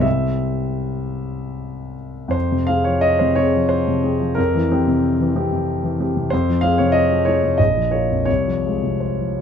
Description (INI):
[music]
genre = classical, romantic character piece for solo piano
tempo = 76-97 BPM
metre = 3/4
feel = rubato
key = F minor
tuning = A4 = 441 Hz
[part]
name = warm concert grand piano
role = solo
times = 0.0-9.4 s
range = Bb1 to F5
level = -17 LUFS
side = left 1 dB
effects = none
[sound]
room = light reverb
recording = minimal, uncompressed stereo recording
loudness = -16 LUFS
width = side -7 dB against mid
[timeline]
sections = 0.0-2.3 A section; 2.3-9.4 B section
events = none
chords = 0.0 C; 2.3 Fm; 4.4 C7/F; 6.3 Fm; 7.6 Bbm; 8.3 Fm/C